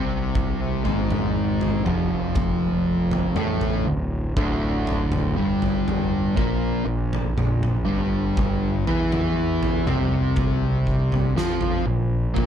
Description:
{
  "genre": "stoner and doom metal",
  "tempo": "60 BPM",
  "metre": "4/4",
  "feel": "straight",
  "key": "D minor",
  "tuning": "A4 = 439 Hz",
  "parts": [
    { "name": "fuzz guitar", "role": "riff", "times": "0.0-12.5 s", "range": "D2 to F4", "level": "-23 LUFS", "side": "equal", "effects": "distortion" },
    { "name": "fuzz fingered electric bass", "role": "bass", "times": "0.0-12.5 s", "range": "D1 to F2", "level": "-27 LUFS", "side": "equal", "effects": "overdrive" },
    { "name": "oversized low-tuned drum kit", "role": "drums", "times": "0.4-12.5 s", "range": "kick drum, snare drum, toms", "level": "-26 LUFS", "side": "equal", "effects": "none" }
  ],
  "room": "little or no reverb",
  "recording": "none",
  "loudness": "-20 LUFS",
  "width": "side -9 dB against mid",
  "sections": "0.0-12.5 A section",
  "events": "none",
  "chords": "0.0 Dm; 6.4 Bb5",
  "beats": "0.35 1.35 | 2.35 3.36 4.36 5.36 | 6.36 7.36 8.37 9.36 | 10.36 11.36 12.36"
}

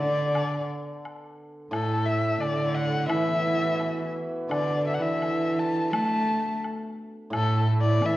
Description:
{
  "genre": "chinese traditional, Chinese chamber ensemble",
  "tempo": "86 BPM",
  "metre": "2/4",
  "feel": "rubato",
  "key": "A zhi mode",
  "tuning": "A4 = 440 Hz",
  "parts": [
    { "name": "dark erhu", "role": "melody", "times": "0.0-8.2 s", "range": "A4 to A5", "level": "-28 LUFS", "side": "left 2 dB", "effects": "none" },
    { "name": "dark cello", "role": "second line", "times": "0.0-8.2 s", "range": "A2 to A3", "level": "-27 LUFS", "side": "right 1 dB", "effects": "none" },
    { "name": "hammered dulcimer", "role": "accompaniment", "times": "0.0-8.2 s", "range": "A2 to B4", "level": "-31 LUFS", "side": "right 1 dB", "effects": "none" },
    { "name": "woodblock", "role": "percussion", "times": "0.4-8.2 s", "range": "none", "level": "-38 LUFS", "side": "left 2 dB", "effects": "none" }
  ],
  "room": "wet recital hall reverb, RT60 1.4 s",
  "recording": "worn, warbling old tape, cassette tape, warbly pitch drift",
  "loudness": "-24 LUFS",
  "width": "side -16 dB against mid",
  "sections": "0.0-8.2 A section",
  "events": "none",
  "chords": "none",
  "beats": "| 0.33 1.02 | 1.71 2.40 | 3.09 3.79 | 4.51 5.22 | 5.93 6.63 | 7.32 8.02"
}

